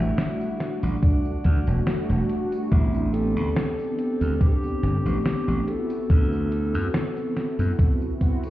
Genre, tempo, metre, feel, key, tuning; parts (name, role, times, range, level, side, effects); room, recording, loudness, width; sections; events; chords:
vaporwave; 71 BPM; 4/4; swing 54% on 16ths; A4 = 440 Hz
breathy alto saxophone; melody; 0.0-8.2 s; D4 to A4; -32 LUFS; left 2 dB; vintage 12-bit sampler grit, tape echo
mellow synth brass; accompaniment; 0.0-8.5 s; G3 to F#5; -28 LUFS; equal; wide subtle chorus
glassy slap bass; bass; 0.0-7.7 s; E1 to F#2; -23 LUFS; equal
detuned 8-bit digital drum machine; drums; 0.2-8.5 s; hi-hat, snare drum, tambourine; -30 LUFS; equal; studio reverb
electronic kick drum; drums; 1.0-8.4 s; -19 LUFS; equal; studio reverb
light reverb; heard muffled through a wall, stone room reverb, EQ; -21 LUFS; side -15 dB against mid
0.0-8.5 A section
0.0 Em11; 2.7 Am11; 5.7 D13